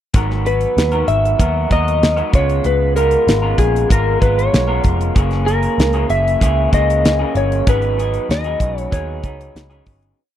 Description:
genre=indie pop, bedroom pop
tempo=96 BPM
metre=4/4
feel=straight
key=G# minor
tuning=A4 = 438 Hz
part: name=electric guitar through a small old amp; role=accompaniment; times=0.1-10.2 s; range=F#2 to A#4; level=-22 LUFS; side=left 1 dB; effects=lush chorus, vibrato effect
part: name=vintage muted picked electric bass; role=bass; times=0.1-10.1 s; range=E#1 to D#2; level=-19 LUFS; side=equal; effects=none
part: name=damped 70s drum kit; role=drums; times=0.1-10.2 s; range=hi-hat, kick drum, snare drum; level=-16 LUFS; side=equal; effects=none
part: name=electric slide guitar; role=melody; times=0.5-9.8 s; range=G#4 to E5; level=-18 LUFS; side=equal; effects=analog chorus, tape echo
room=little or no reverb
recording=dry, close 1970s-style studio recording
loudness=-13 LUFS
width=side -11 dB against mid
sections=0.1-10.2 A section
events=fade-out 7.7-10.2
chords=0.1 G#m9; 2.3 C#6; 5.2 F#9; 7.7 G#m7

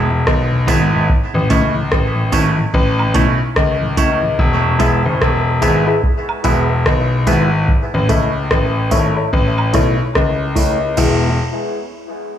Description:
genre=dub reggae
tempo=73 BPM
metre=4/4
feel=swing 61% on 16ths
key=E major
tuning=A4 = 442 Hz
part: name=semi-hollow electric guitar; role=accompaniment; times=0.0-11.3 s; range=G#3 to E4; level=-22 LUFS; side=right 6 dB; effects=low-pass filter, dub echo
part: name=bright concert grand piano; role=bass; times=0.0-11.4 s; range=E1 to C#2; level=-16 LUFS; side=left 2 dB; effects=none
part: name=mellow tonewheel organ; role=accompaniment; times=0.1-4.7, 11.0-11.3 s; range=E2 to E4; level=-24 LUFS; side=left 1 dB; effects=slow rotary speaker, low-pass filter
part: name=soft vintage rhythm box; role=drums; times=0.3-11.2 s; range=crash cymbal, hi-hat, kick drum, rim click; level=-18 LUFS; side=equal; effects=none
part: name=tambourine and woodblock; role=percussion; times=0.7-11.4 s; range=none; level=-31 LUFS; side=right 4 dB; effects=dub echo
part: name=percussive organ stab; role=stabs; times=4.8-11.3 s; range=E4 to E5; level=-21 LUFS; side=left 3 dB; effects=chorus, phaser, low-pass filter, dub echo
room=light reverb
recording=echo-heavy mix, studio reverb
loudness=-13 LUFS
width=side -10 dB against mid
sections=0.0-11.0 A section; 11.0-12.4 B section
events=break 0.0-4.4; filter sweep 0.0-11.0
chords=0.0 E; 1.1 A; 4.4 E; 7.7 A; 11.0 E

